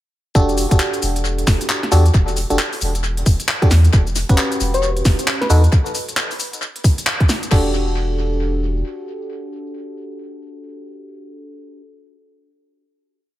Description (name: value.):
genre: UK garage, two-step garage.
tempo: 134 BPM.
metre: 4/4.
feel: swing 61% on 16ths.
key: E dorian.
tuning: A4 = 436 Hz.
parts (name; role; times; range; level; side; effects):
FM electric piano; stabs; 0.3-11.8 s; C#4 to B4; -23 LUFS; equal; chorus, dub echo.
soft dub sub bass; bass; 0.3-8.8 s; E1 to E2; -17 LUFS; equal; none.
electronic kick drum; drums; 0.4-7.6 s; none; -15 LUFS; equal; none.
garage drum kit; drums; 0.4-7.6 s; crash cymbal, handclaps, hi-hat, shaker, snare drum; -21 LUFS; equal; tape echo.
soft struck synth lead; melody; 4.7-5.6 s; B4 to C#5; -25 LUFS; left 3 dB; chorus, vintage 12-bit sampler grit, tape echo.
room: light reverb.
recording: echo-heavy mix.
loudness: -15 LUFS.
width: side -14 dB against mid.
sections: 0.4-7.5 drop; 7.5-11.1 final chord.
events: drop 0.4-7.5; band accent 7.1.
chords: 0.4 Em11; 3.9 Em69; 5.5 B7/E; 7.5 Em11.